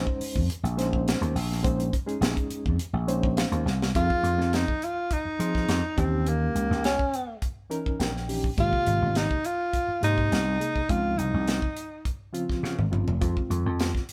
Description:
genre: electric jazz fusion.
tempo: 104 BPM.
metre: 4/4.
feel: straight.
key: F minor.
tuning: A4 = 440 Hz.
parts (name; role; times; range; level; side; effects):
bright reed electric piano; accompaniment; 0.0-14.0 s; C3 to G5; -34 LUFS; equal; fast tremolo.
vintage slap bass; bass; 0.0-13.9 s; F1 to F3; -29 LUFS; equal; none.
tight funk drum kit; drums; 0.1-14.1 s; hi-hat, kick drum, snare drum, toms; -32 LUFS; equal; none.
mellow tenor saxophone; melody; 4.0-12.1 s; Bb3 to F4; -29 LUFS; equal; none.
room: light reverb.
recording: band playing live in one room.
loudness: -26 LUFS.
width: mono.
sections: 0.0-4.0 A section; 4.0-14.1 B section.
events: reed electric piano fill 2.8-4.0, 7.7-8.6; drum fill 3.7, 12.6-13.2.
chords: 0.0 Bbm11; 4.0 Fm7; 6.0 Eb7b9; 8.6 Abmaj9; 10.9 Dbmaj9; 13.2 Fm7.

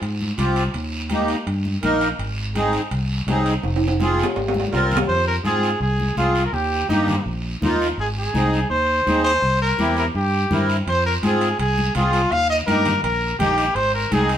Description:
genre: latin, cumbia.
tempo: 166 BPM.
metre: 4/4.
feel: straight.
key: F minor.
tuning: A4 = 441 Hz.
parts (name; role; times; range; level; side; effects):
fingered electric bass; bass; 0.0-14.4 s; F1 to Ab2; -23 LUFS; equal; none.
guiro; percussion; 0.0-14.4 s; none; -32 LUFS; right 2 dB; none.
timbales; percussion; 0.0-5.1, 10.9-14.4 s; none; -27 LUFS; right 1 dB; none.
congas; percussion; 0.2-14.3 s; none; -28 LUFS; left 2 dB; none.
accordion; accompaniment; 0.4-14.4 s; Bb3 to Bb4; -23 LUFS; equal; light tremolo tuning.
bright trumpet; melody; 5.1-14.3 s; Eb4 to F5; -20 LUFS; equal; none.
room: moderate stone room reverb, RT60 1.0 s.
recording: band playing live in one room.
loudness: -18 LUFS.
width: side -10 dB against mid.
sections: 0.0-5.1 A section; 5.1-14.4 B section.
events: drum fill 3.6-5.1.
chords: 0.0 Fm; 0.7 Eb; 2.2 Ab; 3.6 Fm; 6.5 Eb; 8.0 Ab; 9.4 C7; 10.9 Fm; 12.3 Eb; 13.8 Ab.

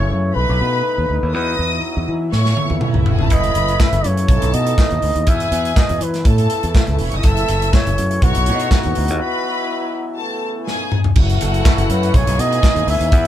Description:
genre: disco.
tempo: 122 BPM.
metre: 4/4.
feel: straight.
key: unclear.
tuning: A4 = 442 Hz.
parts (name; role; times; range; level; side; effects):
breathy flugelhorn; melody; 0.0-13.3 s; F#4 to E5; -22 LUFS; equal; none.
clear studio string section; second line; 0.0-13.3 s; C#4 to E6; -24 LUFS; equal; none.
warm French horn section; sustained chords; 0.0-13.3 s; B2 to E4; -26 LUFS; equal; none.
fingered electric bass; bass; 0.0-13.3 s; E1 to E3; -19 LUFS; equal; none.
modern studio drum kit; drums; 2.3-13.2 s; crash cymbal, handclaps, hi-hat, kick drum, snare drum, toms; -16 LUFS; equal; none.
room: moderate small room reverb, RT60 0.5 s.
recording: band playing live in one room.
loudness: -14 LUFS.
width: side -11 dB against mid.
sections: 0.0-11.2 A section; 11.2-13.3 B section.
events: drum fill 2.3-3.3, 10.7-11.2; break 9.2-11.2.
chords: 0.4 B9; 1.3 Esus2; 2.3 Aadd9; 3.3 F#m7; 4.3 B9; 5.3 Eadd9; 6.3 Aadd9; 7.2 F#m7; 8.2 B9; 9.2 Esus2; 10.2 Aadd9; 10.7 B9; 11.2 F#m7; 12.1 B13.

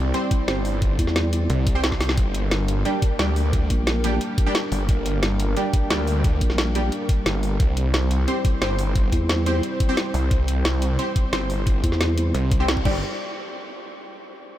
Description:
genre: dark technical drum and bass.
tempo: 177 BPM.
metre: 4/4.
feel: straight.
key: unclear.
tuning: A4 = 439 Hz.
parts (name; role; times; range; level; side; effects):
dark analog pad; sustained chords; 0.0-13.0 s; G3 to D5; -29 LUFS; equal; chorus, sidechain pumping.
snarling distorted saw bass; bass; 0.0-13.0 s; G1 to D2; -23 LUFS; equal; tube saturation, sidechain pumping.
orchestra-hit-like synth stab; stabs; 0.1-13.0 s; G3 to C5; -29 LUFS; right 1 dB; built-in reverb, wide subtle chorus, analog delay.
drum and bass drum kit; drums; 0.1-12.9 s; crash cymbal, hi-hat, snare drum; -28 LUFS; equal; none.
electronic kick drum; drums; 0.3-12.9 s; none; -21 LUFS; equal; none.
vowel-sweep wobble bass; bass; 1.0-1.5, 3.7-4.2, 6.4-6.9, 9.1-9.6, 11.8-12.3 s; Bb1 to E2; -22 LUFS; equal; chorus.
room: light reverb.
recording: none.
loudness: -19 LUFS.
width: side -13 dB against mid.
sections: 0.0-13.0 A section; 13.0-14.4 B section.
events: drop 0.0-13.0; drum fill 1.9; band accent 12.7.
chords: 0.0 C; 2.2 Gm; 7.6 C; 12.9 Gm; 13.0 N.C..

